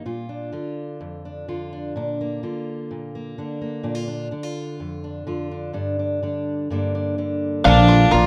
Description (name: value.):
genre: folk.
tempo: 126 BPM.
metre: 4/4.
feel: straight.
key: unclear.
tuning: A4 = 441 Hz.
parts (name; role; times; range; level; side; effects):
fingerpicked steel-string acoustic guitar; accompaniment; 0.0-8.3 s; F2 to F4; -29 LUFS; equal; none.
picked plugged-in steel-string acoustic guitar; accompaniment; 7.6-8.3 s; Bb2 to Bb4; -27 LUFS; equal; none.
bluegrass banjo; arpeggios; 7.6-8.3 s; D4 to Bb4; -25 LUFS; equal; digital delay.
upright bass; bass; 7.6-8.3 s; Bb1; -17 LUFS; equal; none.
twelve-string electric guitar; melody; 7.7-8.3 s; F5; -20 LUFS; equal; tremolo.
warm fiddle; second line; 7.7-8.3 s; D4 to F4; -20 LUFS; equal; none.
clear grand piano; accompaniment; 7.7-8.3 s; Bb1 to D5; -25 LUFS; equal; none.
room: light reverb.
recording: rough home demo mix.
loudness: -23 LUFS.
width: mono.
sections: 0.0-7.6 A section.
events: none.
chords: 0.0 Bb; 5.8 G5; 6.7 Gm; 7.6 Bb.